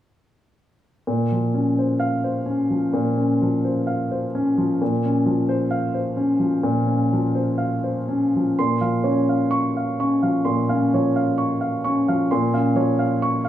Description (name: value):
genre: neoclassical minimalist piano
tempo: 64 BPM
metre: 4/4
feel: rubato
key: Bb minor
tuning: A4 = 440 Hz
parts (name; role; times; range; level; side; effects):
- warm grand piano; solo; 1.1-13.5 s; Bb2 to Db6; -19 LUFS; equal; none
room: light reverb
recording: studio reverb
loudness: -19 LUFS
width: side -12 dB against mid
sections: 1.1-8.6 A section; 8.6-13.5 B section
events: none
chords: 1.1 Bbmadd9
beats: | 1.08 2.02 2.96 3.89 | 4.81 5.71 6.63 7.58 | 8.58 9.53 10.46 11.39 | 12.31 13.23